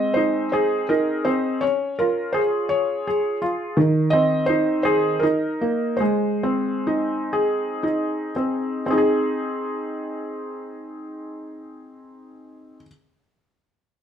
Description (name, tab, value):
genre	children's music, lullaby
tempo	53-85 BPM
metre	3/4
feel	rubato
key	Ab major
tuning	A4 = 440 Hz
part	felt-muted upright piano	solo	0.0-12.9 s	Eb3 to Eb5	-20 LUFS	equal	none
room	moderate studio reverb, RT60 0.7 s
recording	band playing live in one room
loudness	-20 LUFS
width	side -8 dB against mid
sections	0.0-8.9 A section; 8.9-14.0 B section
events	slowing down 3.8-8.9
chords	0.0 Ab; 1.6 Db; 3.8 Ab/Eb; 5.2 Eb5; 6.0 Ab